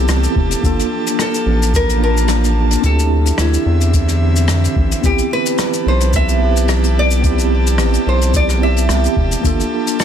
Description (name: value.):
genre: sunset chillout.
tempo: 109 BPM.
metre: 4/4.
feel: swing 54% on 16ths.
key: A minor.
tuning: A4 = 445 Hz.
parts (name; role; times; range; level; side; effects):
nylon-string guitar; melody; 0.0-10.0 s; E4 to E5; -21 LUFS; equal; ping-pong delay.
mellow tine electric piano; accompaniment; 0.0-10.0 s; Bb3 to A5; -20 LUFS; right 1 dB; medium stereo tremolo, auto-pan, ping-pong delay.
airy breathy pad; sustained chords; 0.0-10.0 s; D3 to A5; -24 LUFS; right 2 dB; chorus, vintage 12-bit sampler grit.
round analog bass; bass; 0.0-9.6 s; E1 to F2; -15 LUFS; equal; none.
soft brush drum kit; drums; 0.1-10.0 s; hi-hat, rim click, shaker; -23 LUFS; left 2 dB; soft clipping on snare.
electronic kick drum; drums; 0.4-9.6 s; none; -17 LUFS; equal; none.
room: small room ambience.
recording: dense, heavily limited modern master.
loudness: -12 LUFS.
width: side -9 dB against mid.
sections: 0.0-10.0 A section.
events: none.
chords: 0.0 Am9; 0.6 Gm9; 2.8 Dm9; 5.0 Am9; 9.4 Gm9.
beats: 0.08 | 0.63 1.18 1.73 2.29 | 2.83 3.38 3.94 4.49 | 5.04 5.59 6.14 6.69 | 7.24 7.79 8.34 8.89 | 9.44 9.99.